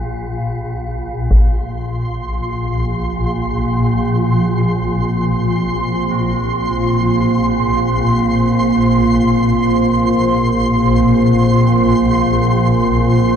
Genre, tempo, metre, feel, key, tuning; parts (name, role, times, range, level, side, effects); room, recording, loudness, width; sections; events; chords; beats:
dark ambient drone; free time; A4 = 440 Hz
swarming drone; drone; 0.0-13.4 s; Bb1 to Bb2; -17 LUFS; left 1 dB; built-in reverb
deep dark ambient pad; sustained chords; 2.4-13.4 s; Bb3 to C5; -16 LUFS; right 2 dB; chorus, built-in reverb
taiko ensemble; percussion; 1.3-1.6 s; -13 LUFS; equal; low-pass filter on perc
flickering grainy texture; texture; 1.8-13.4 s; C6; -21 LUFS; right 2 dB; built-in reverb
tubular bells; arpeggios; 6.1-13.4 s; C4; -37 LUFS; left 1 dB
wet huge ambient reverb, RT60 8.5 s; dark, warm production; -13 LUFS; side -8 dB against mid
0.0-1.3 A section; 1.3-13.4 B section
0.0 N.C.; 1.3 Bbsus2
free time